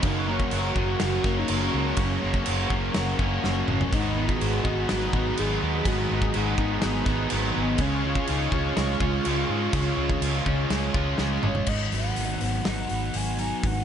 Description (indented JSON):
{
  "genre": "rock, shoegaze and dream pop",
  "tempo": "124 BPM",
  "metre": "4/4",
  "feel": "straight",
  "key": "unclear",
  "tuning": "A4 = 440 Hz",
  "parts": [
    { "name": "mellow horn-like synth lead", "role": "melody", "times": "0.0-13.8 s", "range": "B3 to G#5", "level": "-32 LUFS", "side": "equal", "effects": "chorus, analog delay" },
    { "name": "analog string pad", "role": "sustained chords", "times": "0.0-11.7 s", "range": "G#4 to C#6", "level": "-34 LUFS", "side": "equal", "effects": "ensemble chorus" },
    { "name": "twelve-string electric guitar", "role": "arpeggios", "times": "0.0-13.8 s", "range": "D#3 to F#4", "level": "-35 LUFS", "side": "right 2 dB", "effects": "lush chorus, analog delay" },
    { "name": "crunchy overdriven guitar", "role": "riff", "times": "0.0-13.8 s", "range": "F#2 to E#4", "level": "-33 LUFS", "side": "right 11 dB", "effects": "reverse reverb" },
    { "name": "overdriven electric guitar", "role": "riff", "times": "0.0-11.7 s", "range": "F#2 to E#4", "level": "-31 LUFS", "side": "equal", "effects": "none" },
    { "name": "thick fuzz guitar", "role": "riff", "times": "0.0-13.8 s", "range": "F#2 to G#4", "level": "-32 LUFS", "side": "left 10 dB", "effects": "distortion, analog chorus" },
    { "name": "vintage muted fingered electric bass", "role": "bass", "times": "0.0-13.8 s", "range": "F#1 to G#2", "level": "-29 LUFS", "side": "equal", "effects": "none" },
    { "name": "loose indie drum kit", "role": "drums", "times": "0.0-13.7 s", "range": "crash cymbal, hi-hat, kick drum, snare drum, toms", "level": "-29 LUFS", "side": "equal", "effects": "none" }
  ],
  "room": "studio reverb",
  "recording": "nothing above 10.8 kHz",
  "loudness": "-23 LUFS",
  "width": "side -8 dB against mid",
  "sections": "0.0-11.7 A section; 11.7-13.8 B section",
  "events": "drum fill 3.4-3.9, 11.2-11.7",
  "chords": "0.0 F#; 3.9 G#m7; 7.8 C#; 11.7 G#m7"
}